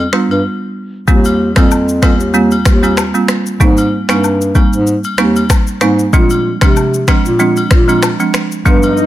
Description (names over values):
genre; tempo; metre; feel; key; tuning
afrobeats; 95 BPM; 4/4; swing 55% on 16ths; unclear; A4 = 440 Hz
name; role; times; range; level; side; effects
dark bass clarinet; bass; 0.0-9.0 s; Eb2 to C3; -14 LUFS; equal; none
agogo bells and woodblock; percussion; 0.0-9.0 s; none; -23 LUFS; left 6 dB; none
folk marimba with hard mallets; accompaniment; 0.1-9.1 s; F3 to F4; -14 LUFS; right 3 dB; none
afro-pop drum kit; drums; 0.1-9.1 s; finger snaps, kick drum, rim click, shaker; -12 LUFS; left 1 dB; none
swell; sound effects; 8.8-9.1 s; none; -17 LUFS; left 3 dB; none
room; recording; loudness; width
small room reverb; none; -9 LUFS; side -14 dB against mid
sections
0.0-9.1 A section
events
break 0.0-1.1; swell 8.8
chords
0.0 G7; 1.1 Eb6; 3.6 Abmaj7; 6.1 Bb7